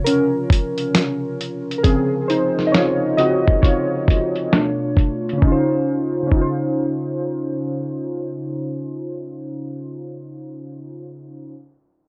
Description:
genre	lo-fi hip hop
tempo	67 BPM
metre	4/4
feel	swing 65% on 16ths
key	Db major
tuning	A4 = 444 Hz
part	warbly lo-fi synth keys	accompaniment	0.0-11.5 s	Cb3 to Eb5	-22 LUFS	equal	chorus, cassette tape, low-pass filter
part	dusty soul sampler-style drum kit	drums	0.1-6.6 s	hi-hat, kick drum, snare drum	-19 LUFS	equal	overdrive
room	moderate studio reverb, RT60 0.5 s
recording	low-pass filter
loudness	-20 LUFS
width	mono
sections	0.0-5.4 A section; 5.4-9.0 B section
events	synth keys solo 0.0-5.4; filter sweep 0.0-5.4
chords	0.0 Dbmaj7; 4.5 Cbm7; 5.4 Dbmaj7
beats	0.05 0.94 | 1.84 2.74 3.63 4.53 | 5.42 6.32 7.21 8.11

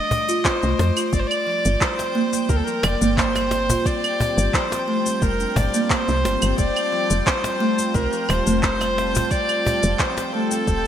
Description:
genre	organic downtempo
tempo	88 BPM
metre	4/4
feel	straight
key	G minor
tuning	A4 = 440 Hz
part	rich kamancheh	melody	0.0-10.9 s	A4 to Eb5	-23 LUFS	equal	digital delay
part	buzzing kalimba	arpeggios	0.0-10.8 s	F3 to G4	-25 LUFS	right 1 dB	none
part	twinkling granular texture	texture	0.0-10.9 s	G5 to D6	-34 LUFS	left 2 dB	built-in reverb
part	cajon	percussion	0.1-10.6 s	none	-27 LUFS	left 1 dB	none
part	electronic cabasa, handclaps and claves	drums	0.3-10.8 s	none	-25 LUFS	equal	gated reverb
part	electronic kick drum	drums	0.4-10.8 s	none	-24 LUFS	equal	none
part	woody FM bass	bass	0.6-10.9 s	Eb1 to F2	-23 LUFS	equal	sidechain pumping
part	warm analog pad	sustained chords	1.1-10.9 s	G3 to A5	-31 LUFS	right 1 dB	chorus, sidechain pumping
room	moderate lush hall reverb, RT60 3.1 s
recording	bright 1980s-style digital production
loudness	-18 LUFS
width	side -9 dB against mid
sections	0.0-10.9 A section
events	none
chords	0.0 F7; 1.1 G7(no3); 6.6 F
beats	0.45 | 1.13 1.81 2.50 3.18 | 3.86 4.54 5.22 5.91 | 6.59 7.27 7.95 8.63 | 9.31 10.00 10.68

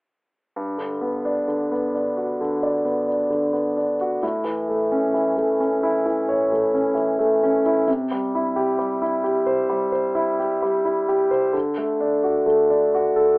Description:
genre	pop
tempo	66 BPM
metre	4/4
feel	straight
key	G major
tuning	A4 = 440 Hz
part	warm concert grand piano	accompaniment	0.6-13.4 s	G2 to D5	-19 LUFS	equal	none
room	wet small room reverb, RT60 0.5 s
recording	rough home demo mix, telephone sound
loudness	-19 LUFS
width	side -32 dB against mid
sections	0.6-13.4 A section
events	none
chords	0.6 Gmaj7; 4.2 A; 7.9 C; 11.5 D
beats	| 0.56 1.48 2.40 3.31 | 4.23 5.14 6.05 6.96 | 7.87 8.79 9.70 10.62 | 11.55 12.47

